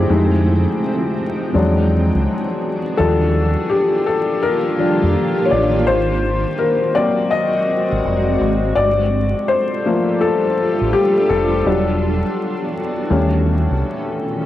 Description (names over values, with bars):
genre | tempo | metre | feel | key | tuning
hip hop | 83 BPM | 4/4 | swing 65% on 16ths | unclear | A4 = 442 Hz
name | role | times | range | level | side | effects
felt-muted upright piano | accompaniment | 0.0-14.5 s | F3 to D#5 | -17 LUFS | left 3 dB | cassette tape, low-pass filter
granular cloud pad | sustained chords | 0.0-14.5 s | Eb3 to A4 | -21 LUFS | right 1 dB | built-in reverb, low-pass filter, cassette tape
deep dub fingered electric bass | bass | 0.0-13.8 s | E1 to F2 | -18 LUFS | right 1 dB | transformer saturation
room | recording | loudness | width
moderate booth ambience, RT60 0.2 s | home recording on cassette, vinyl crackle | -15 LUFS | side -13 dB against mid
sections
0.0-14.5 A section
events
felt piano solo 0.0-14.5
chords
0.1 Fm7; 1.5 E9; 3.0 Ebmaj9; 5.9 G#9; 8.8 Gm7; 11.7 Em7; 13.1 Eb7#11